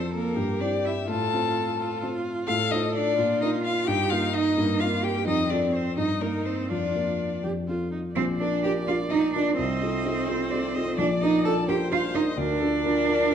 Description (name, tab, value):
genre	quick classical-period movement for piano quartet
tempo	86 BPM (dotted quarters)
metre	6/8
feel	straight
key	Bb major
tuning	A4 = 440 Hz
part	rich violin	melody	0.0-13.3 s	Bb4 to A5	-29 LUFS	left 7 dB	none
part	dark baby grand piano	accompaniment	0.0-13.3 s	Bb1 to C5	-28 LUFS	left 2 dB	none
part	rich viola	accompaniment	0.0-13.3 s	Bb3 to Eb5	-32 LUFS	right 3 dB	none
part	clear cello	second line	0.1-13.3 s	Bb3 to A4	-27 LUFS	right 5 dB	none
room	wet recital hall reverb, RT60 1.3 s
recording	dark, warm production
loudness	-23 LUFS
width	side -8 dB against mid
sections	0.0-8.2 A section; 8.2-13.3 B section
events	none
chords	0.4 C/G; 1.1 F/A; 2.5 F7/A; 3.2 Bb; 3.9 Eb/G; 4.6 Cm7/G; 5.3 F; 6.0 Eb/G; 6.7 Bb/F; 7.4 F; 8.2 Bb; 9.6 F7/C; 11.0 Bb; 12.4 Bb/D